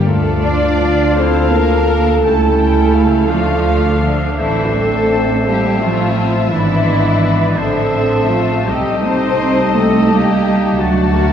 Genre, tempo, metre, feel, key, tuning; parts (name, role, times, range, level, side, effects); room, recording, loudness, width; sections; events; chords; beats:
classical, slow romantic movement for symphony orchestra; 56 BPM (dotted quarters); 6/8; uneven beats, rubato; D minor; A4 = 440 Hz
muted studio violin section; melody; 0.0-11.3 s; D5 to A5; -25 LUFS; left 3 dB
mellow clarinet; second line; 0.0-11.3 s; F3 to F4; -24 LUFS; left 1 dB
muted studio violin section; second line; 0.0-11.3 s; D4 to D5; -20 LUFS; left 3 dB
muted studio viola section; accompaniment; 0.0-11.3 s; B3 to B4; -21 LUFS; right 3 dB
clear French horn section; sustained chords; 0.0-11.3 s; F3 to F4; -22 LUFS; equal
muted symphonic cello section; bass; 0.0-11.3 s; D3 to D4; -18 LUFS; right 2 dB
clear oboe; second line; 0.1-11.3 s; C5 to G5; -25 LUFS; left 1 dB
flute section; second line; 0.1-11.3 s; A5 to B5; -25 LUFS; left 2 dB
muted studio double bass section; bass; 0.1-11.3 s; G#1 to D2; -18 LUFS; right 1 dB
wet concert hall reverb, RT60 1.9 s; heard from further back in the room; -12 LUFS; side -8 dB against mid
0.1-11.3 A section
0.1 Dm; 2.2 A7/C#; 3.3 Dm; 4.4 Am; 6.5 E7/G#; 7.6 Am; 8.7 Am7b5/C; 10.8 D
| 0.06 1.18 | 2.23 3.29 | 4.40 5.47 | 6.52 7.57 | 8.67 9.76 | 10.80